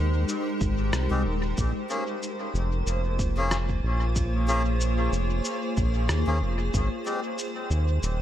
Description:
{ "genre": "ambient dub", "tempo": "93 BPM", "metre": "4/4", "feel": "swing 56% on 16ths", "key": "Bb dorian", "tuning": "A4 = 435 Hz", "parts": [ { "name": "granular cloud pad", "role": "sustained chords", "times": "0.0-8.2 s", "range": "Ab3 to Db5", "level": "-30 LUFS", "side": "equal", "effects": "built-in reverb" }, { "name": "round analog bass", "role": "bass", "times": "0.0-8.2 s", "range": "Eb1 to Eb2", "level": "-25 LUFS", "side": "equal", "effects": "tube saturation" }, { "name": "electronic shaker and rim click", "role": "drums", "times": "0.3-8.2 s", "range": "none", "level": "-35 LUFS", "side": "left 1 dB", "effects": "studio reverb, dub echo" }, { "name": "electronic kick drum", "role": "drums", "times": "0.6-6.9 s", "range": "none", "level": "-29 LUFS", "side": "equal", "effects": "studio reverb" }, { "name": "melodica", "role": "stabs", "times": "1.1-7.2 s", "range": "Ab3 to Ab4", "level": "-33 LUFS", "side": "left 2 dB", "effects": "dub echo" } ], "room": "light reverb, digital ambience", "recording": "none", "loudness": "-24 LUFS", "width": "side -11 dB against mid", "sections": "0.0-8.2 A section", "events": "none", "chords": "0.0 Abmaj7; 1.6 Bbm7; 6.7 Abmaj7" }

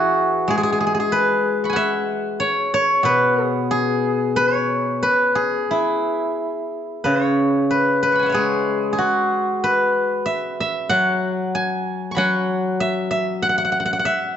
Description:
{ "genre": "chinese traditional, Chinese solo plucked strings", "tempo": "94 BPM", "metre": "4/4", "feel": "rubato", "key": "E gong mode", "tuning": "A4 = 440 Hz", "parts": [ { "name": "steel-string zither", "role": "solo", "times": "0.0-14.4 s", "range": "B2 to C#6", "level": "-17 LUFS", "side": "equal", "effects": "none" } ], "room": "moderate concert hall reverb, RT60 1.9 s", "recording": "dark, warm production, nothing above 7.7 kHz", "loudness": "-17 LUFS", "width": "side -9 dB against mid", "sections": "0.0-7.1 A section; 7.1-14.4 B section", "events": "none", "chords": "none" }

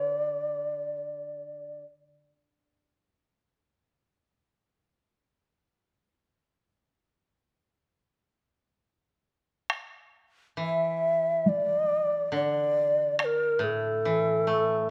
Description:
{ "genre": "japanese traditional, Japanese chamber music", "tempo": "free time", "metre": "none", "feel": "none", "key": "unclear", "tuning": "A4 = 442 Hz", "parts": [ { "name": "mellow long shakuhachi", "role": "melody", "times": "0.0-1.8, 10.6-14.9 s", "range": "A4 to E5", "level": "-29 LUFS", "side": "equal", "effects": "none" }, { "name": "koto", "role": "accompaniment", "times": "0.0-1.8, 10.6-14.9 s", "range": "A2 to A3", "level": "-34 LUFS", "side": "equal", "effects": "none" }, { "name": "taiko ensemble", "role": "percussion", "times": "9.7-13.4 s", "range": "none", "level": "-31 LUFS", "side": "equal", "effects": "none" } ], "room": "light reverb", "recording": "none", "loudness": "-27 LUFS", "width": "mono", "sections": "0.0-9.7 A section; 9.7-14.9 B section", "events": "none", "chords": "none" }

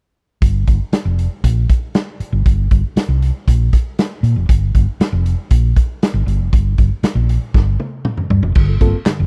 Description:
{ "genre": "funk", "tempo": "118 BPM", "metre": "4/4", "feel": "straight", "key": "G minor", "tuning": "A4 = 440 Hz", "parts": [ { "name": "hollow-body short-scale fingered electric bass", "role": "bass", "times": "0.4-9.3 s", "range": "F1 to Bb2", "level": "-18 LUFS", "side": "equal", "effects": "none" }, { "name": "raw garage drum kit", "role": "drums", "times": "0.4-9.2 s", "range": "crash cymbal, handclaps, hi-hat, kick drum, snare drum, toms", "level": "-17 LUFS", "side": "equal", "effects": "none" }, { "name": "mellow reed electric piano", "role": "stabs", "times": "8.6-9.2 s", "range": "G2 to A4", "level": "-24 LUFS", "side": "equal", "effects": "fast tremolo" } ], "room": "little or no reverb", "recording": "dry, close 1970s-style studio recording", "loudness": "-16 LUFS", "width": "mono", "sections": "0.4-8.6 A section", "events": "drum fill 7.5-8.6", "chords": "0.4 Gm7; 8.6 Gm11" }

